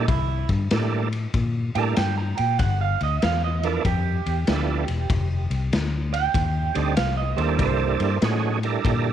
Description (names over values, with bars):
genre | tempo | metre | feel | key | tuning
electric blues shuffle | 96 BPM | 4/4 | swing 65% on 8ths | C mixolydian | A4 = 441 Hz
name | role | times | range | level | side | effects
electric guitar through a small old amp | second line | 0.0-8.2 s | E4 to Bb5 | -27 LUFS | right 11 dB | wide subtle chorus
tonewheel organ | accompaniment | 0.0-9.1 s | F3 to Bb4 | -26 LUFS | right 9 dB | slow rotary speaker, chorus vibrato
vintage muted fingered electric bass | bass | 0.0-9.1 s | E1 to Bb2 | -24 LUFS | left 2 dB | transformer saturation
raw garage drum kit | drums | 0.1-9.0 s | kick drum, ride cymbal, snare drum | -27 LUFS | left 2 dB | none
room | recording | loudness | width
light reverb, small room ambience | 1960s-style stereo | -21 LUFS | side -10 dB against mid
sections
0.0-9.1 A section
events
clean electric guitar solo 0.0-9.1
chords
0.0 C13; 2.6 G13; 5.1 F13; 7.6 C13